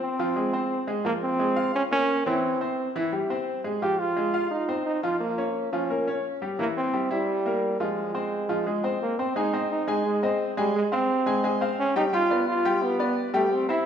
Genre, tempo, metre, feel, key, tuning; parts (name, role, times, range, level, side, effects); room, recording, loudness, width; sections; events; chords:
latin; 173 BPM; 4/4; straight; F minor; A4 = 438 Hz
bright trombone; melody; 0.0-13.9 s; G3 to G4; -26 LUFS; right 1 dB
bright upright piano; accompaniment; 0.0-13.9 s; E3 to Ab5; -27 LUFS; left 1 dB
wet recital hall reverb, RT60 1.9 s; recorded in a church or concert hall; -23 LUFS; side -8 dB against mid
0.0-9.4 A section; 9.4-13.9 B section
0.0 Fm; 1.1 Bbm7; 2.4 C; 3.8 Fm7; 5.2 Bbm; 6.6 C7; 8.0 Fm; 9.4 Ab; 10.7 Fmadd9; 12.1 G7